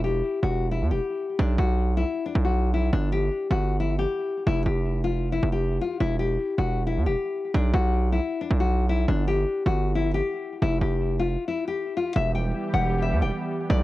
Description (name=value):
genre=hip hop, trap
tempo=156 BPM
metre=4/4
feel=half-time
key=E minor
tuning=A4 = 440 Hz
part: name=nylon-string guitar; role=melody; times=0.0-13.8 s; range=D4 to G5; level=-26 LUFS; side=left 4 dB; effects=cassette tape, analog delay
part: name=distorted 808-style bass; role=bass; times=0.0-13.8 s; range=E1 to E2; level=-23 LUFS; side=right 1 dB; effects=distortion
part: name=warm analog pad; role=sustained chords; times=12.2-13.8 s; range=D3 to G4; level=-29 LUFS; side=right 2 dB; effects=chorus, cassette tape
room=light reverb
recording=home recording on cassette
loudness=-22 LUFS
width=side -16 dB against mid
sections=0.0-12.2 A section; 12.2-13.8 B section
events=break 11.4-12.2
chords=0.0 Em; 1.4 B5; 2.9 N.C.; 4.5 Fsus2; 6.0 Em; 7.5 B5; 9.1 N.C.; 10.6 Fsus2; 12.2 Em